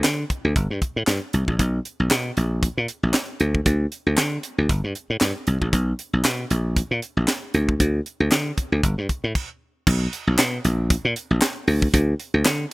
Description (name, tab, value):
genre	early-eighties boogie funk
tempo	116 BPM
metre	4/4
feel	swing 56% on 16ths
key	unclear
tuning	A4 = 440 Hz
part	dry thumbed slap bass	bass	0.0-12.6 s	G1 to D3	-20 LUFS	equal	none
part	tight funk drum kit	drums	0.0-12.6 s	crash cymbal, handclaps, hi-hat, kick drum, snare drum	-22 LUFS	equal	none
room	little or no reverb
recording	rough home demo mix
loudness	-20 LUFS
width	side -22 dB against mid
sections	0.0-9.9 A section; 9.9-12.7 B section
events	stop 9.4-9.9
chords	none